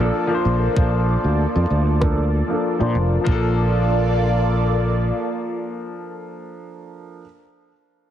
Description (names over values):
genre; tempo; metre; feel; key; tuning
sunset chillout; 96 BPM; 4/4; straight; Bb major; A4 = 440 Hz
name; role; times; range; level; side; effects
bright concert grand piano; accompaniment; 0.0-7.2 s; F3 to C5; -25 LUFS; moving between left 4 dB and right 5 dB; auto-pan, vintage 12-bit sampler grit, low-pass filter, tape echo
lush unison pad; sustained chords; 0.0-6.5 s; Bb3 to D5; -24 LUFS; right 1 dB; chorus, phaser
fretless electric bass; bass; 0.0-5.1 s; F1 to Bb2; -19 LUFS; equal; lush chorus
electronic cabasa and rim click; drums; 0.0-3.2 s; none; -28 LUFS; equal; none
electronic kick drum; drums; 0.8-3.4 s; none; -21 LUFS; equal; none
room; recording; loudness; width
moderate plate reverb, RT60 1.6 s, digital ambience; heavily compressed radio sound, multiband compression; -17 LUFS; side -10 dB against mid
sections
0.0-3.3 A section; 3.3-5.8 B section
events
filter sweep on fretless electric bass 0.0-3.3; filter sweep on grand piano 0.0-3.3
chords
0.0 Bbmaj7